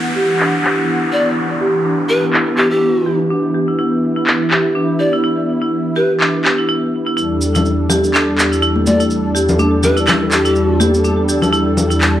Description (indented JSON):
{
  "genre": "afro house",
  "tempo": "124 BPM",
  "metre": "4/4",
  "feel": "swing 56% on 16ths",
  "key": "E minor",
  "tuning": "A4 = 437 Hz",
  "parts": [
    { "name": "warm analog pad", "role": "sustained chords", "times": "0.0-12.2 s", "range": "E2 to F#5", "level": "-18 LUFS", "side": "equal", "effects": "chorus" },
    { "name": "downlifter", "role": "sound effects", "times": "0.0-3.3 s", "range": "none", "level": "-23 LUFS", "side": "right 1 dB", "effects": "none" },
    { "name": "marimba with hard mallets", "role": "arpeggios", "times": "0.2-12.0 s", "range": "D4 to G4", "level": "-17 LUFS", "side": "equal", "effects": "low-pass filter, analog delay" },
    { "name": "electronic handclaps", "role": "drums", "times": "0.4-12.1 s", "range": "none", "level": "-16 LUFS", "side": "equal", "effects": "low-pass filter on hats, studio reverb, low-pass filter on snare, low-pass filter on toms" },
    { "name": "breathy pan flute", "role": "melody", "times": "1.1-10.9 s", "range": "G4 to D5", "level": "-19 LUFS", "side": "left 1 dB", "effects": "analog delay" },
    { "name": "cabasa", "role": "percussion", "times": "7.2-12.1 s", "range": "none", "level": "-26 LUFS", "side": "right 2 dB", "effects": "none" },
    { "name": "congas", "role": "percussion", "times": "7.6-11.9 s", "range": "none", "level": "-19 LUFS", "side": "left 2 dB", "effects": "none" }
  ],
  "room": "light reverb, studio ambience",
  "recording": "dry, gritty hardware recording",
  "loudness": "-13 LUFS",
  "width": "side -12 dB against mid",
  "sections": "0.0-12.2 A section",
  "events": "filter sweep on marimba 0.0-12.2",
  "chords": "0.0 Emadd9; 7.2 G5/E",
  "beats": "0.40 0.88 | 1.37 1.85 2.33 2.82 | 3.30 3.79 4.27 4.75 | 5.24 5.72 6.21 6.69 | 7.17 7.66 8.14 8.62 | 9.11 9.59 10.08 10.56 | 11.04 11.53 12.01"
}